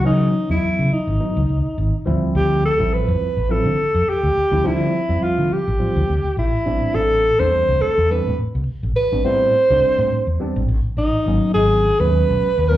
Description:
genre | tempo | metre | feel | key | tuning
jazz | 104 BPM | 4/4 | swing 56% on 16ths | unclear | A4 = 440 Hz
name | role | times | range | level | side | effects
mellow alto saxophone | melody | 0.0-12.8 s | D#4 to C5 | -18 LUFS | equal | slapback echo
mellow tine electric piano | accompaniment | 0.0-12.8 s | E3 to F4 | -23 LUFS | equal | phaser, slapback echo
fretless electric bass | bass | 0.0-12.8 s | G#1 to D3 | -20 LUFS | equal | none
room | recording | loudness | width
light reverb | live gig heard through the venue's PA, club reverb | -16 LUFS | side -14 dB against mid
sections
0.0-12.8 A section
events
none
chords
0.0 C#m11; 2.1 Dm11; 6.7 Am11; 11.3 G#m11

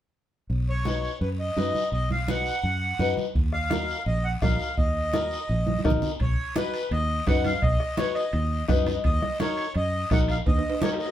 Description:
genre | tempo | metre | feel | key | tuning
latin, cumbia | 169 BPM | 4/4 | straight | unclear | A4 = 440 Hz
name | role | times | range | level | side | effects
fingered electric bass | bass | 0.5-10.6 s | Bb1 to F#2 | -27 LUFS | equal | none
congas | percussion | 0.5-11.0 s | none | -32 LUFS | right 3 dB | none
guiro | percussion | 0.5-11.1 s | none | -40 LUFS | left 2 dB | none
accordion | melody | 0.7-11.1 s | B4 to F#5 | -29 LUFS | equal | none
nylon-string guitar | accompaniment | 0.9-11.1 s | D#4 to F#5 | -28 LUFS | left 4 dB | none
bombo | percussion | 3.4-11.0 s | none | -27 LUFS | equal | none
timbales | percussion | 6.2-11.1 s | none | -36 LUFS | right 4 dB | none
room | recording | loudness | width
moderate studio reverb, RT60 0.7 s | band playing live in one room | -23 LUFS | side -11 dB against mid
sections
0.5-6.2 A section; 6.2-11.1 B section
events
drum fill 5.7-6.2, 10.5-11.1; nylon-string guitar fill 8.5-9.0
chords
0.5 B; 3.4 Ebmadd9; 6.2 B; 9.0 Ebm

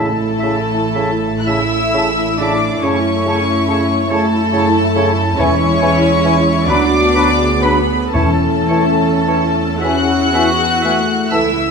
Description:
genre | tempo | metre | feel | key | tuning
classical | 34-48 BPM (dotted quarters) | 6/8 | rubato | A major | A4 = 441 Hz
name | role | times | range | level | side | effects
warm studio violin section | melody | 0.0-11.7 s | A5 to F#6 | -20 LUFS | left 3 dB | none
clear oboe | second line | 0.0-11.5 s | B4 to E5 | -26 LUFS | right 1 dB | none
mellow clarinet | second line | 0.0-11.5 s | D4 to A4 | -26 LUFS | right 1 dB | none
small flute group | second line | 0.0-11.4 s | G#5 to B5 | -25 LUFS | left 1 dB | none
warm symphonic violin section | second line | 0.0-11.7 s | A4 to F#5 | -21 LUFS | left 3 dB | none
dark symphonic viola section | accompaniment | 0.0-11.7 s | E3 to A4 | -21 LUFS | right 2 dB | none
mellow bassoon | accompaniment | 0.0-11.5 s | C#3 to F#3 | -24 LUFS | right 2 dB | none
mellow French horn section | sustained chords | 0.0-11.3 s | G#3 to F#4 | -21 LUFS | left 6 dB | none
dark symphonic double bass section | bass | 0.0-11.7 s | A1 to F#2 | -21 LUFS | right 5 dB | none
rich symphonic cello section | bass | 0.0-11.7 s | A3 to F#4 | -22 LUFS | right 2 dB | none
timpani | percussion | 0.0-9.8 s | E2 to A2 | -24 LUFS | left 1 dB | none
room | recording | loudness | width
wet scoring stage reverb, RT60 1.4 s | none | -12 LUFS | side -5 dB against mid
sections
0.0-11.7 A section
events
none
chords
0.0 A; 2.8 F#m7; 5.4 C#m/E; 6.7 Bm/D; 8.1 A/E; 9.8 E

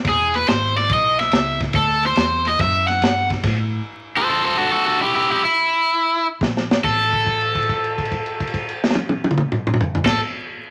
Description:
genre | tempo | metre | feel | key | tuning
electric blues shuffle | 141 BPM | 4/4 | swing 68% on 8ths | unclear | A4 = 440 Hz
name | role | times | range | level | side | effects
vintage muted fingered electric bass | bass | 0.0-3.8, 6.4-10.2 s | E1 to A2 | -29 LUFS | equal | none
crunchy breakbeat drum kit | drums | 0.0-3.6, 6.4-10.1 s | crash cymbal, kick drum, ride cymbal, snare drum, toms | -23 LUFS | equal | none
cranked stack guitar | melody | 0.1-10.2 s | E4 to F#5 | -20 LUFS | equal | overdrive
room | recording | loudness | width
moderate large studio reverb, RT60 1.3 s | vinyl crackle | -19 LUFS | mono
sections
0.0-6.8 A section; 6.8-10.2 B section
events
drum fill 6.4-6.8; held note 6.8-10.0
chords
0.0 E6; 1.7 D9; 3.4 A5; 6.4 N.C.

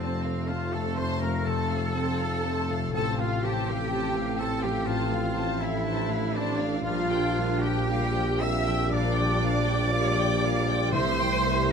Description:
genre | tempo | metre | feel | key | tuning
classical, slow romantic movement for symphony orchestra | 57-63 BPM | 4/4 | rubato | F major | A4 = 440 Hz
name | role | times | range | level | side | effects
rich chamber violin section | melody | 0.0-11.7 s | E5 to A5 | -36 LUFS | left 5 dB | none
mellow clarinet | second line | 0.0-11.7 s | A3 to E4 | -36 LUFS | left 3 dB | none
mellow hollow concert flute | second line | 0.0-11.7 s | C5 to E6 | -37 LUFS | left 2 dB | none
warm chamber violin section | second line | 0.0-11.7 s | C5 to E6 | -38 LUFS | right 1 dB | none
warm oboe | second line | 0.0-11.7 s | C4 to E5 | -36 LUFS | right 1 dB | none
rich studio viola section | accompaniment | 0.0-11.7 s | E3 to C5 | -37 LUFS | right 4 dB | none
concert harp | arpeggios | 0.0-11.7 s | F2 to G4 | -33 LUFS | left 10 dB | none
rich chamber cello section | bass | 0.0-11.7 s | C4 to E5 | -31 LUFS | right 1 dB | none
rich chamber double bass section | bass | 0.0-11.7 s | A1 to F2 | -32 LUFS | right 2 dB | none
warm tuba | bass | 0.0-11.7 s | F1 to C2 | -32 LUFS | right 5 dB | none
timpani | percussion | 0.0-0.4, 10.9-11.7 s | F2 to C3 | -35 LUFS | right 1 dB | none
warm French horn section | sustained chords | 1.0-11.7 s | E3 to C5 | -37 LUFS | left 6 dB | none
room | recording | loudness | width
moderate scoring stage reverb, RT60 1.8 s | none | -24 LUFS | side -6 dB against mid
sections
0.0-11.7 A section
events
none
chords
0.0 F; 2.9 F/A; 6.9 Gm7/Bb; 10.9 C7

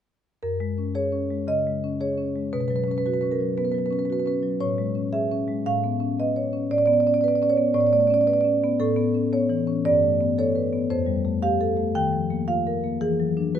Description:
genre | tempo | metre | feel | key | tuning
classical, contemporary piece for solo marimba | 114 BPM | 4/4 | rubato | unclear | A4 = 440 Hz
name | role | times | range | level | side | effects
marimba with medium mallets | solo | 0.4-13.6 s | F2 to G5 | -21 LUFS | equal | none
room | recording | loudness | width
light reverb | close, detailed microphones | -21 LUFS | side -9 dB against mid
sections
0.4-13.6 A section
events
none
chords
0.4 F#add9; 2.5 Bsus2; 4.6 Amaj7; 5.7 Bm9/A; 8.8 Aadd9; 9.8 Gadd9; 10.9 Fadd9; 12.0 D#add9; 13.0 E9

